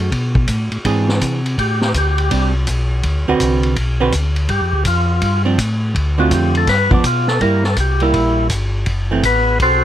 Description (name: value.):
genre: soul jazz organ trio.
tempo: 164 BPM.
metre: 4/4.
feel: swing 64% on 8ths.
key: G mixolydian.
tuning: A4 = 439 Hz.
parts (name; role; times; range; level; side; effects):
archtop guitar, miked and amplified; accompaniment; 0.0-9.2 s; D3 to B4; -18 LUFS; right 4 dB; none.
mellow tonewheel organ; bass; 0.0-9.8 s; F#1 to C3; -17 LUFS; equal; slow rotary speaker.
vintage drum kit; drums; 0.1-9.7 s; hi-hat, kick drum, ride cymbal, snare drum; -21 LUFS; left 1 dB; none.
percussive tonewheel organ; melody; 1.6-9.8 s; B3 to C5; -17 LUFS; left 1 dB; slow rotary speaker.
room: little or no reverb.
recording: close, detailed microphones.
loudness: -14 LUFS.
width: side -11 dB against mid.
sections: 0.0-7.4 A section; 7.4-9.8 A section.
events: tonewheel organ solo 0.0-9.8.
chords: 0.1 E7b13; 1.6 Am11; 3.0 D6; 4.5 G7(no3); 6.0 Dm7; 6.7 G7; 7.4 C7; 8.9 F#m7b5.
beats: | 0.12 0.48 0.85 1.21 | 1.58 1.94 2.31 2.67 | 3.04 3.40 3.77 4.13 | 4.50 4.86 5.22 5.59 | 5.95 6.32 6.68 7.05 | 7.41 7.78 8.14 8.50 | 8.87 9.23 9.60.